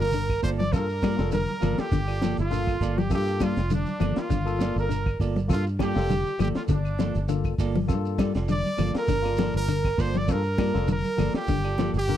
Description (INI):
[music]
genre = afrobeat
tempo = 100 BPM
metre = 4/4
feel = swing 54% on 16ths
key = G minor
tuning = A4 = 440 Hz
[part]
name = brilliant trumpet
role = melody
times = 0.0-12.2 s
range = D4 to D5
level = -31 LUFS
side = equal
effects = none
[part]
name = breathy alto saxophone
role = second line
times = 0.0-12.2 s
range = D4 to D5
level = -35 LUFS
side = right 4 dB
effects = none
[part]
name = mellow cor anglais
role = second line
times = 0.0-12.2 s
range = D4 to D5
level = -39 LUFS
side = right 12 dB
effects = none
[part]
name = barky tine electric piano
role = accompaniment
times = 0.0-12.2 s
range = Bb3 to Bb4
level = -35 LUFS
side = left 11 dB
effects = overdrive
[part]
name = semi-hollow electric guitar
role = arpeggios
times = 0.0-12.2 s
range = D3 to G3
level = -30 LUFS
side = left 10 dB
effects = warbly pitch drift
[part]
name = semi-hollow electric guitar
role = stabs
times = 0.0-12.0 s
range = Bb3 to D5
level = -34 LUFS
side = right 7 dB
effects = spring reverb
[part]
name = fingered electric bass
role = bass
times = 0.0-12.2 s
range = F1 to G2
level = -27 LUFS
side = equal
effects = none
[part]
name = crunchy breakbeat drum kit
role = drums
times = 0.0-12.2 s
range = hi-hat, kick drum, snare drum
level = -30 LUFS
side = equal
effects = none
[part]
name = shekere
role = percussion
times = 0.0-12.2 s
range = none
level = -35 LUFS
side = right 4 dB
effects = none
[part]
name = claves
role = percussion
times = 0.3-11.8 s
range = none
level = -48 LUFS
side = left 11 dB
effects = none
[part]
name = congas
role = percussion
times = 0.6-11.9 s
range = none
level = -32 LUFS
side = right 4 dB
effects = none
[sound]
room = little or no reverb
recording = dry, close 1970s-style studio recording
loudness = -23 LUFS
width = side -11 dB against mid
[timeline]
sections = 0.0-12.2 A section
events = none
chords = 0.0 Gm9